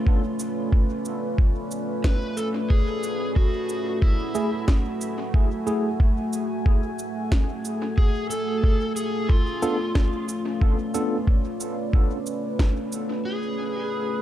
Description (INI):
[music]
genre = ambient dub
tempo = 91 BPM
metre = 4/4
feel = swing 56% on 16ths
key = F# minor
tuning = A4 = 440 Hz
[part]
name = deep dark ambient pad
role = sustained chords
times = 0.0-14.2 s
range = A3 to G#5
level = -28 LUFS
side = right 1 dB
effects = chorus, built-in reverb
[part]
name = electronic kick drum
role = drums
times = 0.1-12.7 s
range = none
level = -19 LUFS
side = equal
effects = studio reverb
[part]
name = electronic cabasa and snare drum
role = drums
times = 0.4-13.1 s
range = none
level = -33 LUFS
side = equal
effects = overdrive, low-pass filter on perc, studio reverb, low-pass filter on snare, dub echo
[part]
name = overdriven slide guitar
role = melody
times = 2.0-14.2 s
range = E4 to B4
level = -31 LUFS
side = left 2 dB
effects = dub echo
[part]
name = bright tine electric piano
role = stabs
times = 4.3-11.2 s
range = A3 to A4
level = -29 LUFS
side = equal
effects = medium stereo tremolo, vintage 12-bit sampler grit, dub echo
[part]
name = drifting glass-harmonics texture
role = texture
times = 13.5-14.2 s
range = B4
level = -34 LUFS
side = right 4 dB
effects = chorus, built-in reverb
[sound]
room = light reverb, digital ambience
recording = dark, warm production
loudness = -22 LUFS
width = side -12 dB against mid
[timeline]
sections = 0.0-13.3 A section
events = none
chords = 0.0 C#7b9b13; 2.7 F#m9; 8.0 C#7b9b13; 13.3 F#madd9